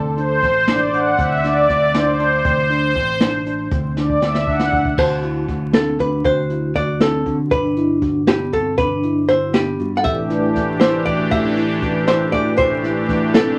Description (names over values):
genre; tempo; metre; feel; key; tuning
progressive instrumental, band music in an uneven meter; 237 BPM (eighths); 5/8; straight; D mixolydian; A4 = 440 Hz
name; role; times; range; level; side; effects
tine electric piano; arpeggios; 0.0-13.5 s; C4 to G4; -29 LUFS; equal; phaser
picked electric bass; bass; 0.0-13.6 s; G1 to D3; -27 LUFS; equal; none
sweeping resonant pad; accompaniment; 0.2-4.7, 10.0-13.6 s; E3 to F#5; -20 LUFS; equal; chorus
jazz brush drum kit; drums; 0.2-13.5 s; crash cymbal, hi-hat, kick drum, snare drum; -24 LUFS; equal; none
hollow-body jazz guitar; melody; 5.0-13.6 s; G4 to F#5; -21 LUFS; equal; none
vibraphone with hard mallets; second line; 5.0-13.6 s; B3 to A4; -26 LUFS; equal; none
room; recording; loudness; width
moderate studio ambience, RT60 0.5 s; vinyl crackle; -18 LUFS; mono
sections
0.0-5.0 A section; 5.0-13.6 B section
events
analog synth pad solo 0.0-5.0; drum fill 4.0-5.0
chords
0.0 D5; 1.2 Cadd9/D; 2.5 D5; 3.7 D9; 7.5 Gmaj7; 10.0 Am7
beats
0.17 0.42 0.68 0.93 | 1.18 1.44 1.69 1.94 2.20 | 2.45 2.70 2.96 3.21 3.46 | 3.71 3.97 4.22 4.47 4.73 | 4.98 5.23 5.49 5.74 5.99 | 6.25 6.50 6.75 7.01 7.26 | 7.51 7.77 8.02 8.27 8.53 | 8.78 9.03 9.29 9.54 9.79 | 10.05 10.30 10.55 10.81 11.06 | 11.31 11.57 11.82 12.07 12.33 | 12.58 12.84 13.09 13.34